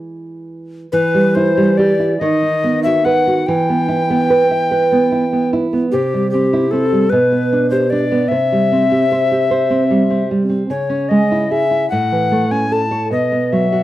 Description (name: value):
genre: romantic duo for recorder and classical guitar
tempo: 49 BPM (dotted quarters)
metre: 6/8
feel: rubato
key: E minor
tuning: A4 = 440 Hz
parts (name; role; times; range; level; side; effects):
- nylon-string guitar; accompaniment; 0.0-13.8 s; A2 to E5; -15 LUFS; right 2 dB; none
- mellow tenor recorder; melody; 0.9-13.8 s; G4 to A5; -17 LUFS; left 4 dB; slapback echo
room: light reverb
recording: dry, close 1970s-style studio recording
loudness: -13 LUFS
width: side -14 dB against mid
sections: 0.9-13.8 A section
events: none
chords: 0.0 E; 0.9 Em; 2.2 B/D#; 3.5 Em; 5.9 C; 7.1 G/B; 8.3 C; 10.7 C#m; 11.9 A; 13.1 B5